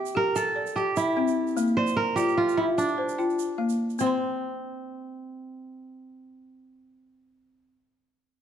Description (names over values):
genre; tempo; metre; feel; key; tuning
west african traditional, West African string and xylophone music; 99 BPM (dotted quarters); 12/8; straight; unclear; A4 = 437 Hz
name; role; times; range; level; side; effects
kora; melody; 0.0-7.7 s; C4 to C5; -27 LUFS; right 3 dB; none
balafon; arpeggios; 0.0-7.8 s; Bb3 to C6; -27 LUFS; left 3 dB; none
egg shaker; percussion; 0.1-4.2 s; none; -42 LUFS; right 13 dB; none
room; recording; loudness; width
moderate recital hall reverb, RT60 1.5 s; dark, warm production; -23 LUFS; side -9 dB against mid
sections
0.0-4.0 A section; 4.0-6.4 B section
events
none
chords
0.0 C; 1.6 Bb; 4.0 N.C.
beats
0.36 0.96 | 1.57 2.18 2.78 3.39 | 3.99 4.60 5.21 5.81